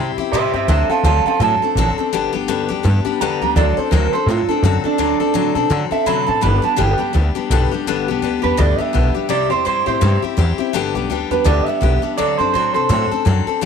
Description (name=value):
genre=rock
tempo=167 BPM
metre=4/4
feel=swing 59% on 8ths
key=G major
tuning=A4 = 440 Hz
part: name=picked steel-string acoustic guitar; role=accompaniment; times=0.0-13.7 s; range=G2 to A4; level=-19 LUFS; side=left 9 dB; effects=none
part: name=upright bass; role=bass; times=0.0-13.7 s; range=G1 to D3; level=-18 LUFS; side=equal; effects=none
part: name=electric guitar through a small old amp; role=melody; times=0.3-13.1 s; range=D4 to B5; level=-19 LUFS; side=right 10 dB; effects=tape echo
room=moderate echo chamber reverb, RT60 1.8 s, small room reverb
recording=1960s-style stereo with parts hard left and right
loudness=-15 LUFS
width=side -6 dB against mid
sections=0.0-7.9 A section; 7.9-13.7 B section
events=none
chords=0.0 C; 0.7 D7; 2.1 G; 3.6 D7; 6.4 G; 9.3 C; 10.7 G; 12.2 D7